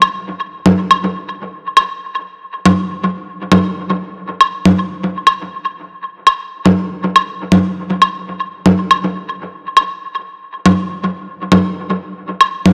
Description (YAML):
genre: techno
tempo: 120 BPM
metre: 4/4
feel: swing 56% on 16ths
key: none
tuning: none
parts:
  - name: woodblock and congas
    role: percussion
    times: 0.0-12.7 s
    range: none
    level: -14 LUFS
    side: equal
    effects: dub echo
room: moderate lush hall reverb, RT60 2.1 s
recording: dry, gritty hardware recording, cassette tape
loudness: -15 LUFS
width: mono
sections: 0.0-12.7 A section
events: none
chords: none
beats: | 0.02 0.52 1.02 1.52 | 2.02 2.52 3.02 3.52 | 4.02 4.52 5.02 5.52 | 6.02 6.52 7.02 7.52 | 8.02 8.52 9.02 9.52 | 10.02 10.52 11.02 11.52 | 12.02 12.52